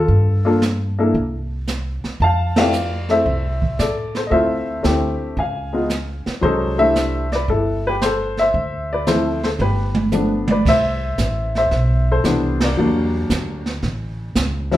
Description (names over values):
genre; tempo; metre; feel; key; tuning
jazz piano trio; 114 BPM; 4/4; swing 69% on 8ths; C major; A4 = 440 Hz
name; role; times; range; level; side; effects
warm baby grand piano; melody; 0.0-14.8 s; E3 to A5; -18 LUFS; left 2 dB; none
upright bass; bass; 0.0-14.8 s; G1 to A2; -22 LUFS; equal; none
jazz brush drum kit; drums; 0.1-14.8 s; brushed snare drum, crash cymbal, hi-hat, kick drum, ride cymbal, snare drum, toms; -23 LUFS; right 2 dB; none
room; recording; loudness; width
wet club reverb, RT60 0.8 s; heard from further back in the room; -17 LUFS; side -14 dB against mid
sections
0.0-10.7 A section; 10.7-14.8 B section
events
band accent 2.5, 12.5; drum fill 9.6-10.7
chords
0.1 Gm9; 1.1 N.C.; 2.2 Fmaj7; 4.3 Dm9; 5.4 Db; 6.4 C69; 8.5 Dm7; 9.6 G7; 10.7 Cmaj7; 12.8 Em7b5; 13.8 A